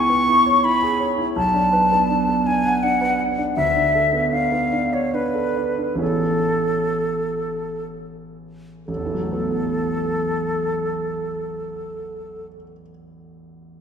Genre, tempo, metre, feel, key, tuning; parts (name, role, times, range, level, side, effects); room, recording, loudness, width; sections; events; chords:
classical, impressionist duo for flute and grand piano; 59-83 BPM; 3/4; rubato; A major; A4 = 440 Hz
concert flute; melody; 0.0-12.4 s; A4 to C#6; -20 LUFS; left 1 dB
warm grand piano; accompaniment; 0.0-13.8 s; A1 to F#5; -24 LUFS; right 2 dB
wet scoring stage reverb, RT60 1.9 s; -18 LUFS; side -7 dB against mid
0.0-8.9 A section; 8.9-11.7 B section
slowing down 2.5-8.9
0.0 C#m7; 1.4 Bm7; 3.6 D5; 6.0 Amaj9; 8.9 Asus2